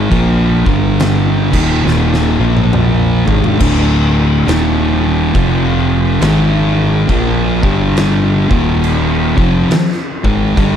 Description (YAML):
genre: stoner and doom metal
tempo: 69 BPM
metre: 4/4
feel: swing 62% on 8ths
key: unclear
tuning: A4 = 440 Hz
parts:
  - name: thick fuzz guitar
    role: riff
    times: 0.0-10.8 s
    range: D2 to Bb3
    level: -15 LUFS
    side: left 9 dB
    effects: distortion
  - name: thick fuzz guitar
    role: riff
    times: 0.0-10.8 s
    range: D2 to Bb3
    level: -15 LUFS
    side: right 6 dB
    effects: distortion
  - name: hollow-body short-scale fingered electric bass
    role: bass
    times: 0.0-10.8 s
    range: D1 to Bb1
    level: -18 LUFS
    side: equal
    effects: overdrive
  - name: oversized low-tuned drum kit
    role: drums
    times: 0.1-10.8 s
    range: crash cymbal, kick drum, snare drum, toms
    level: -18 LUFS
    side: equal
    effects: none
room: little or no reverb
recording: dark, warm production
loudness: -10 LUFS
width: side -9 dB against mid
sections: 0.0-3.6 A section; 3.6-10.8 B section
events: drum fill 1.8-3.6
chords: 0.1 Bb5; 0.5 G5; 1.4 Eb5; 2.3 Bb5; 3.2 G#5; 3.6 D5; 4.5 Eb5; 5.3 F5; 6.2 G#5; 7.1 Bb5; 7.5 G5; 8.4 Eb5; 9.3 N.C.